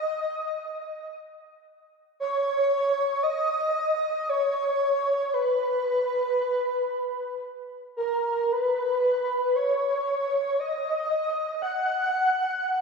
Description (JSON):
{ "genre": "ambient", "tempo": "free time", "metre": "none", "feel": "none", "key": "unclear", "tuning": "A4 = 443 Hz", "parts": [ { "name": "breathy flute-like synth lead", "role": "solo", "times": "0.0-12.8 s", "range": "A#4 to F#5", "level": "-24 LUFS", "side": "equal", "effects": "tremolo, ensemble chorus, tape echo" } ], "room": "wet concert hall reverb, RT60 2.2 s", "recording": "none", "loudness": "-24 LUFS", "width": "side -4 dB against mid", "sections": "0.0-8.5 A section; 8.5-12.8 B section", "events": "none", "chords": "none", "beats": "free time" }